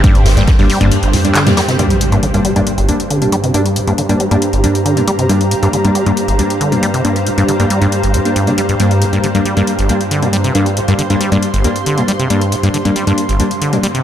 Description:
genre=driving peak-time techno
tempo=137 BPM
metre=4/4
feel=straight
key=G minor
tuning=A4 = 440 Hz
part: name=acid bass, saw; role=riff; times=0.0-14.0 s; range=G1 to G3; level=-16 LUFS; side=equal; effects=sidechain pumping, tape echo
part: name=wavetable chord stab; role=stabs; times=0.0-13.9 s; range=G3 to D4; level=-17 LUFS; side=left 2 dB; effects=sidechain pumping, tape echo
part: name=warm sub bass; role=bass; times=0.0-0.9 s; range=G1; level=-14 LUFS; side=equal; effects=tube saturation, sidechain pumping, low-pass filter
part: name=swarming drone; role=drone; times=0.0-14.0 s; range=G2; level=-21 LUFS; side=right 1 dB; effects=built-in reverb, sidechain pumping
part: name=electronic kick drum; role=drums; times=0.0-0.6 s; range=none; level=-10 LUFS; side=equal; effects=overdrive
part: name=punchy analog drum machine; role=drums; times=0.0-14.0 s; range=handclaps, hi-hat, toms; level=-21 LUFS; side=left 1 dB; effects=overdrive, sidechain pumping on hats, sidechain pumping on toms
part: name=unplugged drum kit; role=drums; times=0.0-1.8 s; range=ride cymbal, snare drum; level=-25 LUFS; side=equal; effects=sidechain pumping on cymbals, high-pass filter on cymbals, sidechain pumping on hats, high-pass filter on hats, high-pass filter on snare, high-pass filter on room
part: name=granular cloud pad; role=texture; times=0.0-14.0 s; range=G4 to C6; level=-20 LUFS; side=right 1 dB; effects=built-in reverb, sidechain pumping
part: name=impact and riser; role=sound effects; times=1.8-3.5, 13.5-14.0 s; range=none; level=-22 LUFS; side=equal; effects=none
room=light reverb, digital ambience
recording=none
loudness=-11 LUFS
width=side -10 dB against mid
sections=0.0-1.8 A section; 1.8-14.0 B section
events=drop 0.0-1.8; break 0.9-1.8; impact 1.8-3.5; filter sweep on acid bass 1.8-14.0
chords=0.0 Gm

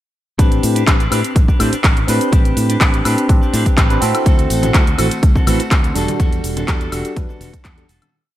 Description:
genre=filtered disco house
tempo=124 BPM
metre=4/4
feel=straight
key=A dorian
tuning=A4 = 439 Hz
part: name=tine electric piano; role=accompaniment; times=0.4-7.8 s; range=G3 to C5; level=-20 LUFS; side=equal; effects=phaser, sidechain pumping
part: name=clean electric guitar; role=riff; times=0.4-8.1 s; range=G3 to B4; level=-24 LUFS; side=left 1 dB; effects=sidechain pumping
part: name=fingered electric bass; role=bass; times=0.4-8.0 s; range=E1 to A2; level=-20 LUFS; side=equal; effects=sidechain pumping
part: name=electronic kick drum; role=drums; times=0.4-7.8 s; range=none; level=-14 LUFS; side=equal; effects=overdrive
part: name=house drum kit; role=drums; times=0.4-8.1 s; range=handclaps, hi-hat, shaker, woodblock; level=-21 LUFS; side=equal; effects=overdrive, gated reverb
part: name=tambourine and congas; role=percussion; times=4.3-8.1 s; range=none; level=-29 LUFS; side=left 3 dB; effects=sidechain pumping on perc
room=digital ambience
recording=bright 1980s-style digital production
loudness=-12 LUFS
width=side -13 dB against mid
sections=0.4-8.1 drop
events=drop 0.4-8.1; fade-out 5.6-8.1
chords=0.4 Am11; 4.3 D7; 6.0 Em11

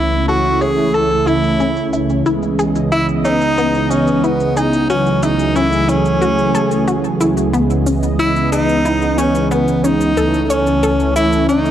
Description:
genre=synthwave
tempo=91 BPM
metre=4/4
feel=straight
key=C# minor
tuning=A4 = 440 Hz
part: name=breathy tenor saxophone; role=melody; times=0.0-11.7 s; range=B3 to A4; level=-17 LUFS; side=equal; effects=digital delay
part: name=lush unison pad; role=sustained chords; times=0.0-11.7 s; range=C#2 to D#5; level=-18 LUFS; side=equal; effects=chorus
part: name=analog pluck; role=arpeggios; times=0.0-11.7 s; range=B3 to C#5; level=-21 LUFS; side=left 2 dB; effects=chorus, tape echo
part: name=mellow synth brass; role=stabs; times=0.0-11.7 s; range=C#2 to C#5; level=-20 LUFS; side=right 2 dB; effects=chorus
part: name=cabasa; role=drums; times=0.1-11.7 s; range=none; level=-33 LUFS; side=right 1 dB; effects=low-pass filter on perc, low-pass filter on room
room=moderate plate reverb, RT60 2.6 s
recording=dark, warm production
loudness=-13 LUFS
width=side -11 dB against mid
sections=0.0-11.7 A section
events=none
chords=0.0 A/C#; 2.3 C#m7; 4.9 F#m7/C#; 7.5 C#m7; 10.2 A/C#

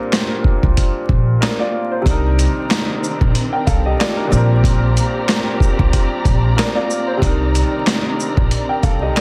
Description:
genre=hip hop, boom-bap hip-hop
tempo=93 BPM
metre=4/4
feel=swing 56% on 16ths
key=C minor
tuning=A4 = 440 Hz
part: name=warm upright piano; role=accompaniment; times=0.0-9.2 s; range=Bb2 to G5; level=-23 LUFS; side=equal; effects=cassette tape, high-pass filter, low-pass filter, plate reverb
part: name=boom bap sampler-style drum kit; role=drums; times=0.1-9.2 s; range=handclaps, hi-hat, kick drum, shaker, snare drum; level=-19 LUFS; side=equal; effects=none
part: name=upright bass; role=bass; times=0.6-9.1 s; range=Bb1 to C2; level=-19 LUFS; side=equal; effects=none
part: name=warm studio string section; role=sustained chords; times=2.0-9.2 s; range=Eb3 to Bb5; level=-28 LUFS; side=equal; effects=high-pass filter, low-pass filter, plate reverb
room=light reverb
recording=dense, heavily limited modern master, vinyl crackle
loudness=-17 LUFS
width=mono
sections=0.0-2.1 A section; 2.1-9.2 B section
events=none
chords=0.0 Bb69; 2.1 Cm9; 4.3 Bb69; 7.2 Cm9

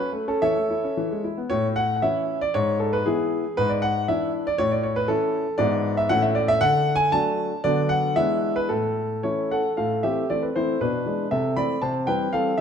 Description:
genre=classical-period piano sonatina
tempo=117 BPM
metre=2/4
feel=rubato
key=A major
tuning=A4 = 440 Hz
part: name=warm concert grand piano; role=solo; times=0.0-12.6 s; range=G#2 to B5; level=-21 LUFS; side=equal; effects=none
room=moderate recital hall reverb, RT60 1.6 s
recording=none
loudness=-21 LUFS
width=side -7 dB against mid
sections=0.0-1.5 A section; 1.5-9.8 B section; 9.8-12.6 C section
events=none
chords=0.4 A/E; 1.0 E; 1.5 A; 2.5 E/G#; 3.6 E7/G#; 4.6 A; 5.6 E7/G#; 6.1 A; 6.6 D; 7.6 Bm/D; 8.2 E7; 8.7 A; 9.8 Am; 10.8 E7/B; 11.3 Am/C; 11.8 C

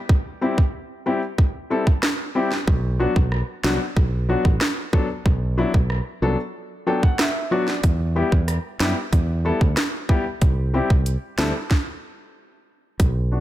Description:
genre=dancehall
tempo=93 BPM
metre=4/4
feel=straight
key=unclear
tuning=A4 = 440 Hz
part: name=island pop drum kit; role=drums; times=0.1-13.1 s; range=hi-hat, kick drum, rim click, snare drum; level=-20 LUFS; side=equal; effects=none
part: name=warm concert grand piano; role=accompaniment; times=0.4-13.4 s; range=F#3 to G5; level=-24 LUFS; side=left 2 dB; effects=none
part: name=fingered electric bass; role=bass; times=2.7-13.4 s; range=A1 to F#2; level=-22 LUFS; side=equal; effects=none
room=little or no reverb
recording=none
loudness=-19 LUFS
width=side -14 dB against mid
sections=0.0-13.0 A section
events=grand piano fill 6.5-7.8; stop 11.7-13.0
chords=0.1 C; 2.7 Bm; 7.8 Em; 10.4 C5

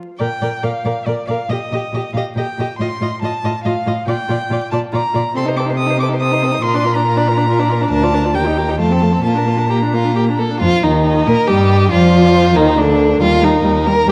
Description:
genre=quick classical-period movement for string quartet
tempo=139 BPM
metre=3/4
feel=rubato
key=Bb major, Eb major from 10.6 s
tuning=A4 = 440 Hz
part: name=rich violin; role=melody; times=0.0-14.1 s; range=Bb4 to Eb6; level=-24 LUFS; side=equal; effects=none
part: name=rich violin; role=second line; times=0.0-14.1 s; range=D4 to Eb5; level=-21 LUFS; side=equal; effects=none
part: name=warm viola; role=accompaniment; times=0.0-14.1 s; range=D3 to Bb4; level=-21 LUFS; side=equal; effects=none
part: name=rich cello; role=bass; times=0.2-14.1 s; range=D2 to C3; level=-20 LUFS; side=equal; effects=none
room=moderate scoring stage reverb, RT60 1.7 s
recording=dark, warm production, vinyl crackle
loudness=-15 LUFS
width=mono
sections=0.2-10.6 A section; 10.6-14.1 B section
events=none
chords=0.2 Bb; 1.5 Eb/Bb; 2.8 F7/A; 4.1 Bb; 5.4 Adim/C; 6.6 Bb; 7.9 Bb/D; 8.4 Eb; 8.8 F; 9.2 Bb; 10.6 Eb; 11.9 Bb/F; 13.2 Eb

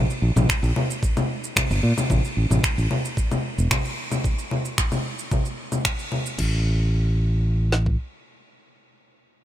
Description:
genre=sunset chillout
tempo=112 BPM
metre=4/4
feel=straight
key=unclear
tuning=A4 = 440 Hz
part: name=fingered electric bass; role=bass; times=0.0-8.0 s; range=E1 to Bb2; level=-20 LUFS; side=equal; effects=none
part: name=deep house drum kit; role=drums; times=0.1-6.5 s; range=congas, crash cymbal, finger snaps, shaker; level=-24 LUFS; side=left 1 dB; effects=overdrive
part: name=smooth R&B drum kit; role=drums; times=0.5-8.0 s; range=kick drum, snare drum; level=-25 LUFS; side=equal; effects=none
room=light reverb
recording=none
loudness=-20 LUFS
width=side -12 dB against mid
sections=0.0-2.1 A section; 2.1-6.4 B section; 6.4-9.4 C section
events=none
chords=none

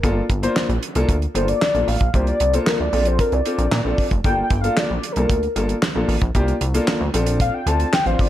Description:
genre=early-eighties boogie funk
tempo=114 BPM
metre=4/4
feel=straight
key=G minor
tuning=A4 = 440 Hz
part: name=warm velvety synth lead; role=melody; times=0.0-8.3 s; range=Bb4 to A5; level=-22 LUFS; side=left 1 dB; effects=chorus, slapback echo
part: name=warm concert grand piano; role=accompaniment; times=0.0-8.2 s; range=Bb3 to C5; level=-24 LUFS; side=left 2 dB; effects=none
part: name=chorused synth bass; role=bass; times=0.0-8.3 s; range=F1 to Bb2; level=-21 LUFS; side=equal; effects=none
part: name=damped 70s drum kit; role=drums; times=0.0-8.3 s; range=handclaps, hi-hat, kick drum, snare drum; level=-22 LUFS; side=equal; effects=gated reverb
room=light reverb, studio reverb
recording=none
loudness=-17 LUFS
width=side -12 dB against mid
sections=0.0-8.3 A section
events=soft synth lead solo 0.0-8.3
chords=0.0 Gm7; 2.1 C7sus4; 2.9 Bbmaj7; 4.2 Gm7; 6.4 C7sus4; 7.1 Bbmaj7

